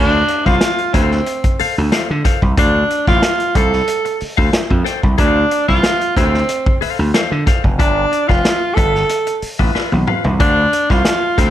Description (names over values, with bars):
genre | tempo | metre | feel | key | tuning
funk | 92 BPM | 4/4 | straight | D dorian | A4 = 441 Hz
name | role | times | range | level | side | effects
clear tenor saxophone | melody | 0.0-11.5 s | C4 to A4 | -16 LUFS | right 1 dB | none
clean electric guitar | accompaniment | 0.0-11.5 s | F4 to G5 | -23 LUFS | left 7 dB | none
gritty slap bass | bass | 0.0-11.5 s | F1 to D3 | -18 LUFS | equal | overdrive
vintage drum kit | drums | 0.3-11.5 s | hi-hat, kick drum, snare drum, toms | -17 LUFS | equal | none
room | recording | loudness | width
light reverb | none | -13 LUFS | side -12 dB against mid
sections
0.0-11.5 A section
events
drum fill 9.8-10.4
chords
0.0 Dm7; 7.8 G13; 10.4 Dm7